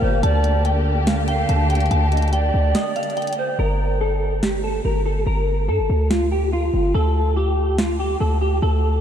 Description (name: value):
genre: hip hop, trap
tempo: 143 BPM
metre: 4/4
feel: half-time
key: G minor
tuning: A4 = 436 Hz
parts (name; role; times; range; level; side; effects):
- clean electric guitar; melody; 0.0-9.0 s; F4 to A5; -23 LUFS; equal; ensemble chorus, low-pass filter, analog delay
- reedy pan flute; second line; 0.0-3.6 s; C5 to G5; -27 LUFS; right 4 dB; analog delay
- muted studio string section; sustained chords; 0.0-3.6 s; Bb2 to G4; -25 LUFS; left 2 dB; none
- hard-hitting 808-style bass; bass; 0.0-9.0 s; G1 to G2; -20 LUFS; equal; none
- trap drum kit; drums; 0.2-7.9 s; hi-hat, snare drum; -28 LUFS; right 1 dB; none
room: moderate huge ambient reverb, RT60 5.3 s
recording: dreamy mix soaked in reverb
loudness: -17 LUFS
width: side -9 dB against mid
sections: 0.0-3.6 A section; 3.6-9.0 B section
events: break 2.7-3.6; hi-hats muted 3.6-9.0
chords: 0.2 Dsus4; 3.6 Gmadd9; 6.9 Dsus4